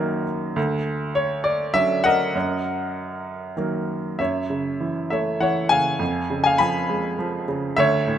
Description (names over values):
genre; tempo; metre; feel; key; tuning
classical, lyrical solo piano; 100 BPM; 3/4; rubato; F# major, F# minor from 4.2 s; A4 = 440 Hz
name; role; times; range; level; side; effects
clear baby grand piano; solo; 0.0-8.2 s; D2 to B5; -20 LUFS; equal; none
room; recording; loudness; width
light reverb; close, detailed microphones; -20 LUFS; side -10 dB against mid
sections
0.0-4.2 A section; 4.2-8.2 B section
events
none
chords
0.0 F#6; 0.6 Dmaj7; 2.3 F#6; 4.2 F#m7; 6.0 C#7/E#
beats
| 0.57 1.16 1.75 | 2.35 2.95 3.57 | 4.20 4.81 5.42 | 6.01 6.61 7.19 | 7.78